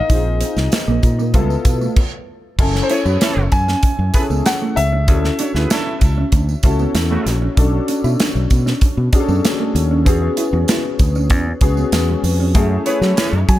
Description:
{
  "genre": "polished 1980s jazz-funk pop",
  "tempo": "96 BPM",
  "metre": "4/4",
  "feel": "straight",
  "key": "unclear",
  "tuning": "A4 = 445 Hz",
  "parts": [
    { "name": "felt-muted upright piano", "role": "melody", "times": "0.0-6.6, 12.9-13.6 s", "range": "C5 to G#5", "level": "-23 LUFS", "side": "left 2 dB", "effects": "none" },
    { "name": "dark concert grand piano", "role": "accompaniment", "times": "0.0-13.6 s", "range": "A3 to G#5", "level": "-22 LUFS", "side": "left 3 dB", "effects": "analog chorus" },
    { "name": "mellow electric guitar", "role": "riff", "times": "0.0-13.4 s", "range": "G3 to F#4", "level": "-25 LUFS", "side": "right 4 dB", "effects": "lush chorus" },
    { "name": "fingered electric bass", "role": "bass", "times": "0.1-13.6 s", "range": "F#1 to F#3", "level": "-18 LUFS", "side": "equal", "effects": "none" },
    { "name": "modern studio drum kit", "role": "drums", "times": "0.1-13.6 s", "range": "crash cymbal, hi-hat, kick drum, snare drum", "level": "-17 LUFS", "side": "equal", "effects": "none" },
    { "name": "tambourine", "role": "percussion", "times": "0.1-13.6 s", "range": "none", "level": "-36 LUFS", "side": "right 8 dB", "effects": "none" },
    { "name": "mellow horn section", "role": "second line", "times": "2.9-7.4, 12.9-13.4 s", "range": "C#3 to C#5", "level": "-26 LUFS", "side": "right 4 dB", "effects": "digital delay" }
  ],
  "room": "little or no reverb",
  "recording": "none",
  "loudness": "-14 LUFS",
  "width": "side -14 dB against mid",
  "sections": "0.0-2.6 A section; 2.6-13.6 B section",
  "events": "stop 2.0-2.6",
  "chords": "0.1 Bb9sus4; 1.3 Db7alt; 2.6 F#m9; 5.1 Dmaj9; 7.6 Bm9; 10.1 E69; 12.6 F#m9"
}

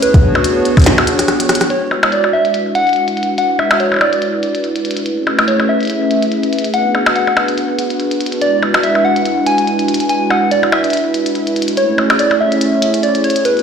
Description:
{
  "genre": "IDM",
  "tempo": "143 BPM",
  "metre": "4/4",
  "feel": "swing 56% on 16ths",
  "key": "unclear",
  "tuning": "A4 = 436 Hz",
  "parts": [
    { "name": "soft struck synth lead", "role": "melody", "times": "0.0-13.6 s", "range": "B4 to G#5", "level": "-16 LUFS", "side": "equal", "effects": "chorus, tape echo" },
    { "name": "hollow soft pad", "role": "sustained chords", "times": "0.0-13.6 s", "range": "G#3 to C#5", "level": "-16 LUFS", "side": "equal", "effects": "chorus, sidechain pumping" },
    { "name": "glitchy drum kit", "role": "drums", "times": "0.0-13.6 s", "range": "hi-hat, percussion blips, rim click, snare drum", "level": "-17 LUFS", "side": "left 1 dB", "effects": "low-pass filter on hats, small room ambience, low-pass filter on perc, low-pass filter on snare, tape echo" },
    { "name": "electronic kick drum", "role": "drums", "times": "0.1-0.8 s", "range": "none", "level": "-8 LUFS", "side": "equal", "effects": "small room ambience" }
  ],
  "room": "wet echo chamber reverb, RT60 1.6 s",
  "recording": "played on a big sound system in a bare room, large studio reverb",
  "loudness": "-12 LUFS",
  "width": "side -7 dB against mid",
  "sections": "0.0-1.7 A section; 1.7-13.6 B section",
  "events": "kick drops out 0.9-1.7; drum fill 0.9-1.7; filter sweep on analog synth pad 1.7-13.6",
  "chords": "0.0 Bm69; 1.7 E9; 5.1 Amaj7; 6.7 Bm6; 8.4 E9; 11.8 Amaj7"
}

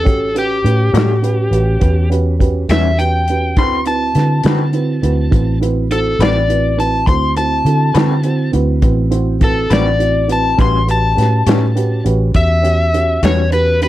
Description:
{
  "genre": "slow blues",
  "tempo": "68 BPM (dotted quarters)",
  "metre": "12/8",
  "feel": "straight",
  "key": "unclear",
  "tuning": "A4 = 438 Hz",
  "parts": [
    { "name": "overdriven slide guitar", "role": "melody", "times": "0.0-13.9 s", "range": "G4 to C6", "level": "-17 LUFS", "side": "left 2 dB", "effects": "none" },
    { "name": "dark upright piano", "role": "accompaniment", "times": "0.0-13.9 s", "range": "C4 to D5", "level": "-20 LUFS", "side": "right 5 dB", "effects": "none" },
    { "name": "vintage muted fingered electric bass", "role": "bass", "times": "0.0-13.9 s", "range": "A1 to D3", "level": "-16 LUFS", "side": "equal", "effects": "none" },
    { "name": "warm soul drum kit", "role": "drums", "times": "0.1-13.9 s", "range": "hi-hat, kick drum, snare drum", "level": "-17 LUFS", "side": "equal", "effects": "none" },
    { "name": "electric guitar through a small old amp", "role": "accompaniment", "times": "0.9-13.4 s", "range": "A2 to B4", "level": "-22 LUFS", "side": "left 5 dB", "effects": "tremolo" }
  ],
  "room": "light reverb",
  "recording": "none",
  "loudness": "-12 LUFS",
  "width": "side -14 dB against mid",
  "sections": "0.0-13.9 A section",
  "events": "electric slide guitar solo 0.0-13.9",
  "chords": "0.0 A13; 3.6 D13; 10.6 A13"
}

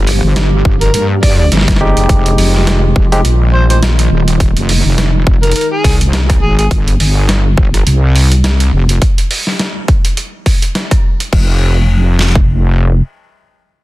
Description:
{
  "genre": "glitch hop",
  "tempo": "104 BPM",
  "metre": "4/4",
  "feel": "swing 57% on 16ths",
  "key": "F minor",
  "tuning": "A4 = 442 Hz",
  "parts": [
    { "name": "warbly tape-like pad", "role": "sustained chords", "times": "0.0-6.7 s", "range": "Eb3 to G4", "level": "-21 LUFS", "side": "right 1 dB", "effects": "chorus, built-in reverb, sidechain pumping" },
    { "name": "wobble bass", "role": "bass", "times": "0.0-13.0 s", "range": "Eb1 to G2", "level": "-11 LUFS", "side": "equal", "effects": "chorus, tube saturation" },
    { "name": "boom bap sampler-style drum kit", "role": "drums", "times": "0.1-11.5 s", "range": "crash cymbal, hi-hat, rim click, snare drum", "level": "-18 LUFS", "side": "equal", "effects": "none" },
    { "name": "dubstep drum kit", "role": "drums", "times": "0.7-12.5 s", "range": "kick drum, snare drum", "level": "-12 LUFS", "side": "equal", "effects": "overdrive" },
    { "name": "overdriven harmonica", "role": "melody", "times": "0.8-6.7 s", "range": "Ab4 to D5", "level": "-19 LUFS", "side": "equal", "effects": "digital delay" },
    { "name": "barky tine electric piano", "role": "stabs", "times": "1.8-3.2 s", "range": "Ab3 to G4", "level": "-17 LUFS", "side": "equal", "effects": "overdrive, sidechain pumping, digital delay" }
  ],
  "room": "digital ambience",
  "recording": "dense, heavily limited modern master",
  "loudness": "-9 LUFS",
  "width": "side -17 dB against mid",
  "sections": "0.0-11.3 A section; 11.3-13.6 B section",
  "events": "drop 0.0-11.3",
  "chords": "0.0 Gm7; 2.1 Fm7; 6.7 Fsus2 (rootless); 11.3 N.C."
}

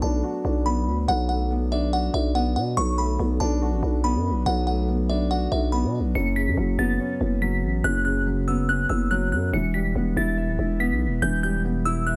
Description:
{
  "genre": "hip hop, drill",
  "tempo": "142 BPM",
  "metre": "4/4",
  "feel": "half-time",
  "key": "B minor",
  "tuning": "A4 = 438 Hz",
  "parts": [
    { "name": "delicate synth tine bell", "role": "melody", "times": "0.0-12.2 s", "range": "E5 to C#7", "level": "-30 LUFS", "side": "equal", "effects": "chorus, phaser" },
    { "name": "dark concert grand piano", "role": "accompaniment", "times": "0.0-12.2 s", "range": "F#2 to E5", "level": "-29 LUFS", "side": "equal", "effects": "none" },
    { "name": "growling 808-style bass", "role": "bass", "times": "0.0-12.2 s", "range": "D1 to B2", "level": "-26 LUFS", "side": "equal", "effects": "none" }
  ],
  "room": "light reverb, small room ambience",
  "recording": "dark, warm production",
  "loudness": "-24 LUFS",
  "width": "mono",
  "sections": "0.0-6.2 A section; 6.2-12.2 B section",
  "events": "none",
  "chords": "0.0 Bm7; 6.2 F#sus4; 9.5 Em"
}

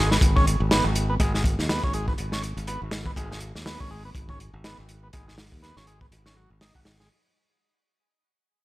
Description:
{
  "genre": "breakbeat, breaks",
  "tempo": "122 BPM",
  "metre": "4/4",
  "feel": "swing 58% on 16ths",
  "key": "G# minor",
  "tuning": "A4 = 441 Hz",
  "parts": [
    { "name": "overdriven combo organ", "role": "riff", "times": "0.0-7.1 s", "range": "F#3 to F#4", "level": "-30 LUFS", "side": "right 1 dB", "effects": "low-pass filter, dub echo" },
    { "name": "modern bright fingered electric bass", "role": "bass", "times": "0.0-7.1 s", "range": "G#1 to D#2", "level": "-28 LUFS", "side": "equal", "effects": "none" },
    { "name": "crunchy breakbeat drum kit", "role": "drums", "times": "0.1-7.1 s", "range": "hi-hat, kick drum, snare drum", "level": "-24 LUFS", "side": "equal", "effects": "none" }
  ],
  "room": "studio ambience",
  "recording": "none",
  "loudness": "-22 LUFS",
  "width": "side -18 dB against mid",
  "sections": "0.0-7.1 A section",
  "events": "fade-out 0.0-7.1",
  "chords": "0.0 G#m"
}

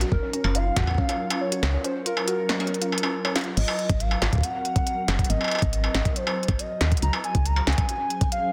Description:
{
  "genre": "IDM",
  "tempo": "139 BPM",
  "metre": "4/4",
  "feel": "straight",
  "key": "unclear",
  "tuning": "A4 = 440 Hz",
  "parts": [
    { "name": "glassy FM pad", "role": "sustained chords", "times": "0.0-8.5 s", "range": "Gb3 to C5", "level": "-36 LUFS", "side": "equal", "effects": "ensemble chorus, built-in reverb, phaser" },
    { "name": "warbly dusty pluck", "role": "arpeggios", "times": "0.0-3.4 s", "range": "Db4 to Gb4", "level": "-34 LUFS", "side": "equal", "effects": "chorus, vintage 12-bit sampler grit, dub echo" },
    { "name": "woody FM bass", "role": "bass", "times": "0.0-7.7 s", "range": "Gb1 to Eb2", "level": "-27 LUFS", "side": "equal", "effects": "tube saturation" },
    { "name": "industrial drum kit", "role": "drums", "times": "0.0-8.4 s", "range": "crash cymbal, hi-hat, snare drum, struck metal", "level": "-30 LUFS", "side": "equal", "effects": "none" },
    { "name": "warbly nostalgic lead", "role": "melody", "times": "0.1-8.5 s", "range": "Bb4 to Bb5", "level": "-31 LUFS", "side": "equal", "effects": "chorus, tremolo, dub echo" },
    { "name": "electronic kick drum", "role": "drums", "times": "0.1-1.1, 3.9-8.3 s", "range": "none", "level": "-27 LUFS", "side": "equal", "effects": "none" }
  ],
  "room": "light reverb",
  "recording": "dense, heavily limited modern master",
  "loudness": "-24 LUFS",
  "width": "mono",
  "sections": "0.0-3.6 A section; 3.6-8.5 A section",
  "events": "none",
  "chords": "0.1 Gbmaj7; 3.6 Ab9; 7.0 Dbmaj7(no3)"
}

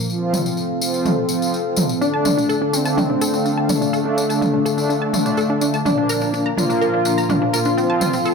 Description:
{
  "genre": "melodic techno",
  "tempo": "125 BPM",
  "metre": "4/4",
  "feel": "straight",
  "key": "D minor",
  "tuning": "A4 = 436 Hz",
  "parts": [
    { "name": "sweeping resonant pad", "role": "sustained chords", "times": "0.0-8.3 s", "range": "C4 to F5", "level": "-24 LUFS", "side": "equal", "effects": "chorus" },
    { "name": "brassy analog pad", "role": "stabs", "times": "0.0-8.3 s", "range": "Bb2 to F4", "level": "-23 LUFS", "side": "right 1 dB", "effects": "chorus, tremolo, ping-pong delay" },
    { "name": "tambourine", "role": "percussion", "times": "0.1-8.3 s", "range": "none", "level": "-28 LUFS", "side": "left 3 dB", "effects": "none" },
    { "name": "electronic toms", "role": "drums", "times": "0.3-8.1 s", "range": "none", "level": "-24 LUFS", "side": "right 1 dB", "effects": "low-pass filter on toms, low-pass filter on room" },
    { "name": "wide unison lead", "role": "melody", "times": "2.0-8.3 s", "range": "A3 to F4", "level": "-22 LUFS", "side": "left 2 dB", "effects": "lush chorus, ping-pong delay" },
    { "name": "wide unison pluck", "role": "arpeggios", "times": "2.0-8.3 s", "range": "C4 to Bb5", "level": "-22 LUFS", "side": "equal", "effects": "ping-pong delay" }
  ],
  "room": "moderate lush hall reverb, RT60 2.1 s",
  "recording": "none",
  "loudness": "-16 LUFS",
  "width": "side -5 dB against mid",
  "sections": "0.0-8.3 A section",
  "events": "filter sweep on analog synth pad 0.0-8.3",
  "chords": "0.1 F; 2.0 Dm; 5.9 Bb; 7.8 F"
}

